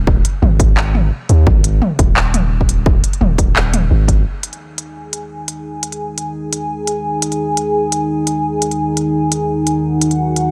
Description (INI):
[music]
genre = half-time drum and bass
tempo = 172 BPM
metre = 4/4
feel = swing 55% on 16ths, half-time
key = unclear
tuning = A4 = 440 Hz
[part]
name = long sustained 808-style bass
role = bass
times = 0.0-4.2 s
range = D#1 to D#2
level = -16 LUFS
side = equal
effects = tube saturation
[part]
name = electronic kick drum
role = drums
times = 0.1-4.2 s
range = none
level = -17 LUFS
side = equal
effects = none
[part]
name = industrial drum kit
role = drums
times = 0.2-10.4 s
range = handclaps, hi-hat, toms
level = -22 LUFS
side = equal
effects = none
[part]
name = dark analog pad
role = sustained chords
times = 4.3-10.5 s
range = D#3 to G#5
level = -19 LUFS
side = equal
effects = chorus, sidechain pumping
[sound]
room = light reverb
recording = none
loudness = -16 LUFS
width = mono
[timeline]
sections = 0.0-4.3 A section; 4.3-10.5 B section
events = none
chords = 0.0 G#5